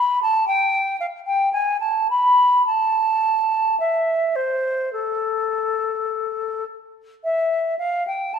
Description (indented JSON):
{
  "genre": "classical, baroque-style fantasia for unaccompanied flute",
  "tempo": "50-60 BPM",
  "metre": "4/4",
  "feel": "rubato",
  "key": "A minor",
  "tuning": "A4 = 440 Hz",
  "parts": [
    { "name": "silver concert flute", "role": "solo", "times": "0.0-8.4 s", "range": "A4 to B5", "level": "-18 LUFS", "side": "equal", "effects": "none" }
  ],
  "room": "moderate recital hall reverb, RT60 1.6 s",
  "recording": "none",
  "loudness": "-18 LUFS",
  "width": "side -7 dB against mid",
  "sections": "0.0-7.3 A section; 7.3-8.4 A section",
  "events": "none",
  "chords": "none",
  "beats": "0.47 1.53 | 2.65 3.79 4.93 6.09 | 7.25 8.32"
}